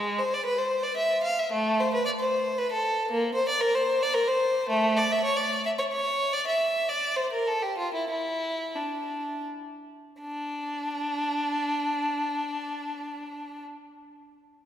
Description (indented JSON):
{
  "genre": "classical, baroque-style suite movement for unaccompanied violin",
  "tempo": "77-118 BPM",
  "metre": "3/4",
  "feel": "rubato",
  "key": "A minor",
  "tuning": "A4 = 438 Hz",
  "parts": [
    { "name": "clear violin", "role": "solo", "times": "0.0-13.6 s", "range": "G#3 to F5", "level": "-25 LUFS", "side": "equal", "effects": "none" }
  ],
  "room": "wet church reverb, RT60 2.8 s",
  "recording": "recorded in a church or concert hall",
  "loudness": "-25 LUFS",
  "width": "side -10 dB against mid",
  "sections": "0.0-10.2 A section; 10.2-14.6 B section",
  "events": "slowing down 5.5-10.2",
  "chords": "none"
}